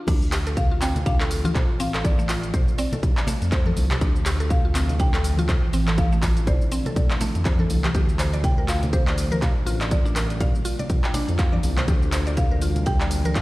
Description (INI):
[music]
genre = afro house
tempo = 122 BPM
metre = 4/4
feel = swing 58% on 16ths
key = D minor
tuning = A4 = 441 Hz
[part]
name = mallet-like synth pluck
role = arpeggios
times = 0.0-13.4 s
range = A3 to G5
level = -31 LUFS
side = equal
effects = chorus, sidechain pumping, dub echo
[part]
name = ethereal airy pad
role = sustained chords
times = 0.5-13.4 s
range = D3 to F4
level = -32 LUFS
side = equal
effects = ensemble chorus, built-in reverb, phaser, sidechain pumping
[part]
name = smooth synth bass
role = bass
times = 0.1-13.4 s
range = A1 to F2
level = -24 LUFS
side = equal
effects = sidechain pumping
[part]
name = electronic kick drum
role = drums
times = 0.1-13.4 s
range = none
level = -22 LUFS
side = equal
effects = overdrive
[part]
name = house drum kit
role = drums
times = 0.1-13.4 s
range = crash cymbal, handclaps, hi-hat, shaker, toms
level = -29 LUFS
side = equal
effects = overdrive
[part]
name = congas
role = percussion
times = 0.1-13.3 s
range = none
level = -29 LUFS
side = left 1 dB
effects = none
[part]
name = marimba with medium hard mallets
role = melody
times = 0.6-13.4 s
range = C5 to G5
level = -34 LUFS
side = equal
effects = dub echo
[sound]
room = light reverb, digital ambience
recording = played on a big sound system in a bare room, stone room reverb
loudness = -19 LUFS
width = side -19 dB against mid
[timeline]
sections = 0.1-13.4 A section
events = drop 0.1-13.4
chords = 0.1 Dm; 7.9 Gm7